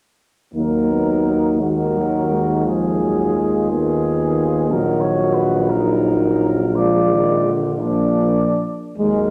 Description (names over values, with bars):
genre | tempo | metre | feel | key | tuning
classical, hymn-like piece for brass band | 49-60 BPM (dotted quarters) | 6/8 | rubato | Eb minor | A4 = 440 Hz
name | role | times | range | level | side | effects
dark cornet | melody | 0.5-9.3 s | Ab4 to D5 | -26 LUFS | equal | none
mellow French horn section | second line | 0.5-9.3 s | Ab3 to Gb4 | -24 LUFS | equal | none
mellow euphonium | accompaniment | 0.5-9.3 s | Gb3 to Cb4 | -25 LUFS | equal | none
mellow trombone | accompaniment | 0.5-9.3 s | D3 to Ab3 | -27 LUFS | equal | none
warm tuba | bass | 0.5-9.3 s | Bb1 to Eb2 | -24 LUFS | equal | none
room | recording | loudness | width
wet scoring stage reverb, RT60 1.4 s | none | -18 LUFS | mono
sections
0.5-9.0 A section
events
none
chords
0.5 Ebm; 2.7 Fm7b5/Eb; 4.7 Ebm/Bb; 6.8 Bb7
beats
| 0.55 1.62 | 2.66 3.71 | 4.72 5.74 | 6.77 7.83 | 8.99